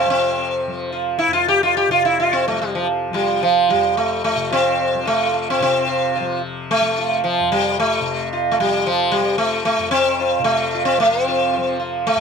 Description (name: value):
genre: indian classical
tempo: 110 BPM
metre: 5/4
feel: straight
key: F raga hamsadhwani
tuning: A4 = 440 Hz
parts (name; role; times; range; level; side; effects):
- sitar; melody; 0.0-12.2 s; F3 to G4; -16 LUFS; right 1 dB; none
- tanpura; drone; 0.0-12.2 s; F2 to F3; -28 LUFS; left 5 dB; none
room: little or no reverb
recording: close, detailed microphones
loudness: -16 LUFS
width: side -6 dB against mid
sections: 0.0-5.6 A section; 5.6-12.2 B section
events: speeding up 0.0-12.2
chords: none